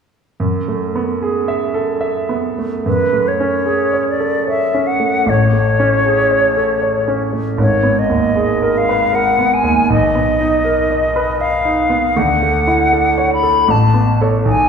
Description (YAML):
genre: classical, impressionist duo for flute and grand piano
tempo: 68-81 BPM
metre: 3/4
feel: rubato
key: F# minor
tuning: A4 = 440 Hz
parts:
  - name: clear grand piano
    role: accompaniment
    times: 0.4-14.7 s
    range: G#1 to E5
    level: -15 LUFS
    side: right 2 dB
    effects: none
  - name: silver concert flute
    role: melody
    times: 2.9-14.7 s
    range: B4 to B5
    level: -15 LUFS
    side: left 2 dB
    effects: none
room: wet recital hall reverb, RT60 1.4 s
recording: heard from further back in the room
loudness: -13 LUFS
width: side -6 dB against mid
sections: 0.4-2.9 A section; 2.9-14.7 B section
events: none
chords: 0.4 F#m11; 2.9 F#madd9; 5.3 Amaj7; 7.6 G#madd9; 9.9 Bmaj7; 12.2 Dmaj9; 13.7 Aadd9